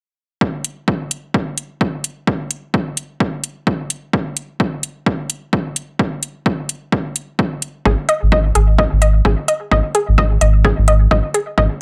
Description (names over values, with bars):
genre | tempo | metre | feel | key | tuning
minimal techno | 129 BPM | 4/4 | swing 60% on 16ths | unclear | A4 = 440 Hz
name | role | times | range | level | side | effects
electronic kick drum | drums | 0.4-11.7 s | none | -21 LUFS | equal | overdrive, high-pass filter on kick, high-pass filter on room
electronic hi-hat | drums | 0.6-11.5 s | none | -22 LUFS | equal | overdrive
resonant blip pluck | riff | 7.9-11.6 s | G#4 to D#5 | -20 LUFS | equal | chorus, vintage 12-bit sampler grit, sidechain pumping, analog delay
round analog bass | bass | 7.9-11.7 s | G#1 | -16 LUFS | equal | sidechain pumping
room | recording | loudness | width
little or no reverb | dry, gritty hardware recording, cassette tape | -18 LUFS | mono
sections
0.4-11.8 A section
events
none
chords
0.4 G#5